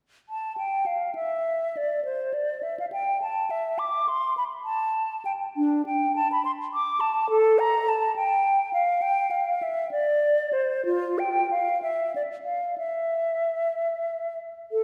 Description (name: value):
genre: classical, baroque-style fantasia for unaccompanied flute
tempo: 60-71 BPM (dotted quarters)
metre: 6/8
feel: rubato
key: A minor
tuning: A4 = 441 Hz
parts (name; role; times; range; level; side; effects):
- hollow concert flute; solo; 0.3-14.8 s; D4 to D6; -26 LUFS; equal; none
room: wet concert hall reverb, RT60 1.9 s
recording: heard from further back in the room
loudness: -26 LUFS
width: mono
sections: 0.3-14.7 A section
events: none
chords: none